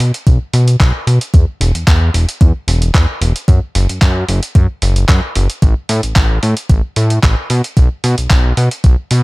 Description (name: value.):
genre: nu-disco, nu disco.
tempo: 112 BPM.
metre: 4/4.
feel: straight.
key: unclear.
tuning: A4 = 440 Hz.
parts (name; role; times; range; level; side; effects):
fat analog bass; bass; 0.0-9.2 s; E1 to B2; -12 LUFS; equal; none.
dusty soul sampler-style drum kit; drums; 0.0-9.2 s; handclaps, hi-hat; -20 LUFS; equal; none.
electronic kick drum; drums; 0.3-9.0 s; none; -10 LUFS; equal; overdrive.
room: little or no reverb.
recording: none.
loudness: -10 LUFS.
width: side -23 dB against mid.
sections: 0.0-9.2 A section.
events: none.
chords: none.